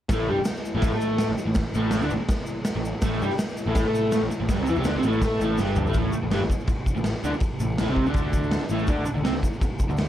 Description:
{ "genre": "garage rock duo or trio", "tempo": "164 BPM", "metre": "4/4", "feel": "straight", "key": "unclear", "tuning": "A4 = 440 Hz", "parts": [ { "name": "crunchy overdriven guitar", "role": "riff", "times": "0.1-10.0 s", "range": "G2 to A4", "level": "-25 LUFS", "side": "equal", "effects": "none" }, { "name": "fuzz picked electric bass", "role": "bass", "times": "0.1-10.1 s", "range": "G1 to A2", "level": "-28 LUFS", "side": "equal", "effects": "overdrive" }, { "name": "raw garage drum kit", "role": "drums", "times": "0.1-10.1 s", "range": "crash cymbal, kick drum, snare drum, toms", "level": "-26 LUFS", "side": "equal", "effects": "none" }, { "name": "tube shaker", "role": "percussion", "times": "0.1-10.1 s", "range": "none", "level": "-46 LUFS", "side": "left 4 dB", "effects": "none" } ], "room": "light reverb", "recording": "cassette tape", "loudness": "-22 LUFS", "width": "side -11 dB against mid", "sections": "0.1-6.0 A section; 6.0-10.1 B section", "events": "drum fill 5.6-6.0", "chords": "0.1 A5; 6.0 Gsus4 (rootless); 8.9 Csus2" }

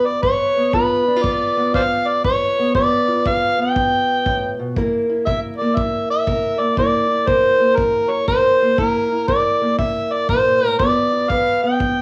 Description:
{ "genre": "acoustic country blues, solo or duo", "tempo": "119 BPM", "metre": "4/4", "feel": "swing 65% on 8ths", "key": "unclear", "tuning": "A4 = 439 Hz", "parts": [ { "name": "overdriven harmonica", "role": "melody", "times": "0.0-12.0 s", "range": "Bb4 to G5", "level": "-19 LUFS", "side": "equal", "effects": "cassette tape" }, { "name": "fingerpicked steel-string acoustic guitar", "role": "accompaniment", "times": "0.0-12.0 s", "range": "G2 to B4", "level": "-24 LUFS", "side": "equal", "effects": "cassette tape" }, { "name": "kick drum", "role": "drums", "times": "0.2-12.0 s", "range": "none", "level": "-28 LUFS", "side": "equal", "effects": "none" } ], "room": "moderate digital room reverb, RT60 1.0 s, small room ambience", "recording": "home recording on cassette, vinyl crackle, studio ambience", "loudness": "-18 LUFS", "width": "mono", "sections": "0.0-12.0 A section", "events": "none", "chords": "0.0 G7; 4.8 C7; 10.8 G7" }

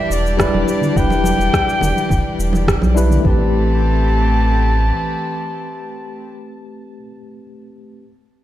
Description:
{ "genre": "sunset chillout", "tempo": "105 BPM", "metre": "4/4", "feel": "straight", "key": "A minor", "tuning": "A4 = 438 Hz", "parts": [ { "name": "mellow soprano saxophone", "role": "melody", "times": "0.0-6.3 s", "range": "D5 to A5", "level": "-22 LUFS", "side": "left 1 dB", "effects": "ping-pong delay" }, { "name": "tine electric piano", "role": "accompaniment", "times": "0.0-8.1 s", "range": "G3 to B4", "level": "-23 LUFS", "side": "left 2 dB", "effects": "auto-pan, digital delay" }, { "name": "rich chamber string section", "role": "sustained chords", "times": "0.0-6.3 s", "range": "E3 to D5", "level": "-24 LUFS", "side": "left 1 dB", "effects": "none" }, { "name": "round analog bass", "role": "bass", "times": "0.1-4.9 s", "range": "E1 to B1", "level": "-17 LUFS", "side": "equal", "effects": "none" }, { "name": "electronic cabasa and rim click", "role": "drums", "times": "0.1-3.2 s", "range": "none", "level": "-23 LUFS", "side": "equal", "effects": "none" }, { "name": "electronic kick drum", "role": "drums", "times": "0.4-3.4 s", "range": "none", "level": "-19 LUFS", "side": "equal", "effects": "none" }, { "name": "congas", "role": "percussion", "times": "0.4-3.2 s", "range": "none", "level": "-23 LUFS", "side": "right 2 dB", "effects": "none" } ], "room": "light reverb, digital ambience", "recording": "played on a big sound system in a bare room, stone room reverb", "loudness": "-14 LUFS", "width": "side -13 dB against mid", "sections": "0.0-3.2 A section; 3.2-5.5 B section", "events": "none", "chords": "0.0 Em7; 3.2 Am9" }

